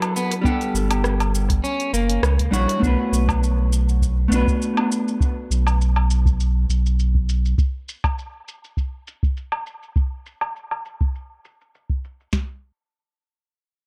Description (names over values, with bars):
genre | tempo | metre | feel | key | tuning
sunset chillout | 101 BPM | 4/4 | swing 54% on 16ths | B minor | A4 = 440 Hz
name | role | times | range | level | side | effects
vintage hollow-body jazz guitar | accompaniment | 0.0-5.2 s | F#3 to F#5 | -26 LUFS | equal | analog delay
deep house drum kit | drums | 0.0-12.3 s | hi-hat, rim click, shaker, woodblock | -30 LUFS | equal | overdrive, low-pass filter on perc, low-pass filter on hats, low-pass filter on snare, low-pass filter on room, analog delay
electric guitar at the edge of break-up | arpeggios | 0.2-2.8 s | A#3 to G4 | -30 LUFS | equal | warbly pitch drift, analog delay
soft vintage rhythm box | drums | 0.4-12.5 s | kick drum, snare drum | -24 LUFS | equal | none
warm sub bass | bass | 0.7-7.5 s | F#1 to C#2 | -21 LUFS | equal | none
room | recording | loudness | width
light reverb, digital ambience | echo-heavy mix | -21 LUFS | mono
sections
0.0-2.8 A section; 2.8-12.3 B section; 12.3-13.9 C section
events
filter sweep on drum 2.8-12.3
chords
0.5 Gmaj9; 1.6 F#7b9b13; 2.8 Bm7; 7.6 N.C.